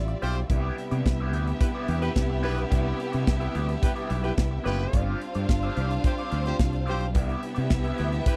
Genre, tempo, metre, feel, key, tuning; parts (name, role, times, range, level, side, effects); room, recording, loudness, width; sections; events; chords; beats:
disco; 108 BPM; 4/4; straight; C major; A4 = 440 Hz
warm studio violin section; second line; 0.0-8.4 s; G3 to F5; -35 LUFS; equal
rich studio string section; sustained chords; 0.0-8.4 s; C3 to E5; -38 LUFS; equal
fingered electric bass; bass; 0.0-8.2 s; F#1 to C3; -30 LUFS; equal
electric guitar at the edge of break-up; accompaniment; 0.1-8.3 s; B3 to E5; -40 LUFS; equal; wah
modern studio drum kit; drums; 0.1-8.4 s; hi-hat, kick drum, snare drum; -27 LUFS; equal
warm horn section; stabs; 0.2-8.4 s; E4 to C5; -33 LUFS; equal
little or no reverb; dry, close 1970s-style studio recording; -26 LUFS; mono
0.0-8.4 A section
0.5 Cmaj9; 4.9 G7sus4; 7.2 Cmaj9
| 0.50 1.05 1.60 2.16 | 2.71 3.27 3.82 4.38 | 4.93 5.49 6.04 6.60 | 7.15 7.71 8.26